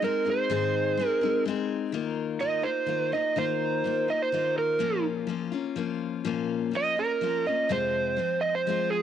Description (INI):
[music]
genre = rock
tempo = 125 BPM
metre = 3/4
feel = straight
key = unclear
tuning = A4 = 438 Hz
[part]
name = overdriven slide guitar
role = melody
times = 0.0-9.0 s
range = Ab4 to Eb5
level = -26 LUFS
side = right 4 dB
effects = cassette tape
[part]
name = picked steel-string acoustic guitar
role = accompaniment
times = 0.0-9.0 s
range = F2 to Ab4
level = -29 LUFS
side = left 8 dB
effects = none
[sound]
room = moderate studio reverb, RT60 0.6 s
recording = home recording on cassette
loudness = -25 LUFS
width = side -9 dB against mid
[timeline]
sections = 0.0-1.9 A section; 1.9-9.0 B section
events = electric slide guitar solo 1.9-9.0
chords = 0.0 Ab; 1.9 Ebsus2; 4.8 Bbm; 7.7 Fm